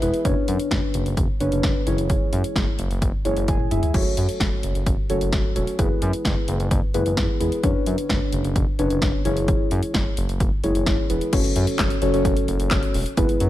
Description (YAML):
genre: synth-pop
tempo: 130 BPM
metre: 4/4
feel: straight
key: F# minor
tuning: A4 = 440 Hz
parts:
  - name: muted felt-like synth keys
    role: accompaniment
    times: 0.0-13.5 s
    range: B3 to G#5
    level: -24 LUFS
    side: left 1 dB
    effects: chorus
  - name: smooth synth bass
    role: bass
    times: 0.0-13.5 s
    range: E1 to F#2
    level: -24 LUFS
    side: equal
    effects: none
  - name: house drum kit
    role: drums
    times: 0.0-13.5 s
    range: crash cymbal, handclaps, hi-hat, kick drum, snare drum, toms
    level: -23 LUFS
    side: equal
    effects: none
room: light reverb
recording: none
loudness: -19 LUFS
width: side -14 dB against mid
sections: 0.0-11.3 A section; 11.3-13.5 B section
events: synth keys fill 0.0, 3.3-3.9; drum fill 3.5-3.9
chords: 0.3 Bmadd9/F#; 1.9 C#m/F#; 3.9 F#m; 5.8 E/F#; 7.6 Bmadd9/F#; 9.3 C#m/F#; 11.3 F#m